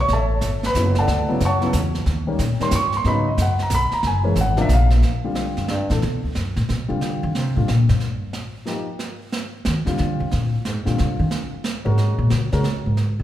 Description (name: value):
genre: jazz, small-group swing and bop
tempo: 182 BPM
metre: 3/4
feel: swing 64% on 8ths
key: Eb major from 5.0 s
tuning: A4 = 444 Hz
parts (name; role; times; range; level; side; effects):
- dark grand piano; accompaniment; 0.0-12.6 s; C3 to C#6; -23 LUFS; left 1 dB; none
- upright bass; bass; 0.0-13.2 s; F#1 to Eb3; -20 LUFS; equal; none
- jazz brush drum kit; drums; 0.1-13.2 s; brushed snare drum, hi-hat, kick drum, snare drum; -29 LUFS; right 3 dB; none
room: wet recital hall reverb, RT60 1.5 s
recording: recorded in a church or concert hall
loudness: -18 LUFS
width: side -12 dB against mid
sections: 0.0-5.0 A section; 5.0-13.0 A section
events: upright bass solo 5.0-13.2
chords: 0.1 A7; 1.1 Dmaj7; 2.1 D#7; 3.1 G#m7; 4.0 F#7; 4.7 A#5; 5.0 Bbmaj13 (rootless); 6.0 D7; 7.0 Gm7; 8.0 Eb; 9.0 Cmadd9; 10.0 Bb7; 11.0 Ebmaj7 (rootless); 12.0 Gbadd9